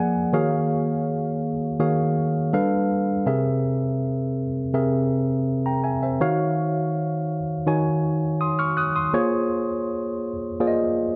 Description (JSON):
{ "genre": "soul", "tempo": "82 BPM", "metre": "4/4", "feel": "straight", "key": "Eb dorian", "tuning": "A4 = 443 Hz", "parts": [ { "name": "tine electric piano", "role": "solo", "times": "0.0-11.2 s", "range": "C3 to Gb6", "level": "-23 LUFS", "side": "equal", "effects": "none" } ], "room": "light reverb", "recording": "dark, warm production", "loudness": "-23 LUFS", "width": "mono", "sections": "0.0-6.2 A section; 6.2-11.2 B section", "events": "tine electric piano fill 0.0-0.3", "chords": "0.3 Ebm11; 2.5 G9; 3.3 C7b13; 6.2 Ebm9; 9.1 Bbm9", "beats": "| 0.34 1.07 1.80 2.54 | 3.27 4.00 4.74 5.47 | 6.20 6.94 7.67 8.40 | 9.14 9.87 10.60" }